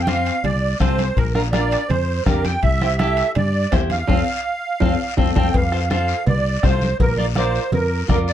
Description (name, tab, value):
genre	latin, cumbia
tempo	165 BPM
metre	4/4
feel	straight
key	F major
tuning	A4 = 440 Hz
part	musette accordion	melody	0.0-8.3 s	Bb4 to G5	-22 LUFS	right 3 dB	none
part	fingered electric bass	bass	0.0-8.3 s	Bb1 to G2	-22 LUFS	equal	none
part	clean electric guitar	accompaniment	0.1-8.3 s	C4 to D5	-24 LUFS	left 1 dB	none
part	bombo	percussion	0.1-8.3 s	none	-21 LUFS	left 2 dB	none
part	congas	percussion	0.1-8.3 s	none	-24 LUFS	right 1 dB	none
part	guiro	percussion	0.1-8.3 s	none	-34 LUFS	left 11 dB	none
part	timbales and cowbell	percussion	0.1-7.9 s	none	-30 LUFS	right 4 dB	none
room	light reverb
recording	dark, warm production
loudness	-17 LUFS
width	side -10 dB against mid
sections	0.0-5.5 A section; 5.5-8.3 A section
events	band accent 4.1-5.5; drum fill 4.4-5.5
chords	0.0 F; 1.2 Bb; 2.6 C; 4.1 F; 7.0 Bb